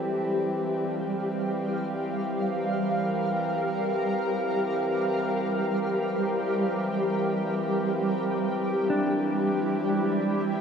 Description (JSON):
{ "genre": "ambient", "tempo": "free time", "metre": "none", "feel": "none", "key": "unclear", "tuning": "A4 = 440 Hz", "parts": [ { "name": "shimmering ambient pad", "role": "sustained chords", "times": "0.0-10.6 s", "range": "G3 to F5", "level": "-26 LUFS", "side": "equal", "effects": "chorus, built-in reverb" }, { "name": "hand-pumped harmonium", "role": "drone", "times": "0.0-10.6 s", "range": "E3 to C4", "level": "-32 LUFS", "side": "equal", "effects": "none" }, { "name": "mellow electric guitar", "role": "arpeggios", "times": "8.9-10.6 s", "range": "D4", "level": "-29 LUFS", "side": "left 1 dB", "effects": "spring reverb, tape echo" } ], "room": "wet huge ambient reverb, RT60 7.7 s", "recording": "dark, warm production", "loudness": "-25 LUFS", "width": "side -7 dB against mid", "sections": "0.0-10.6 A section", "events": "none", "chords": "0.0 Gm; 7.9 Cadd9/E" }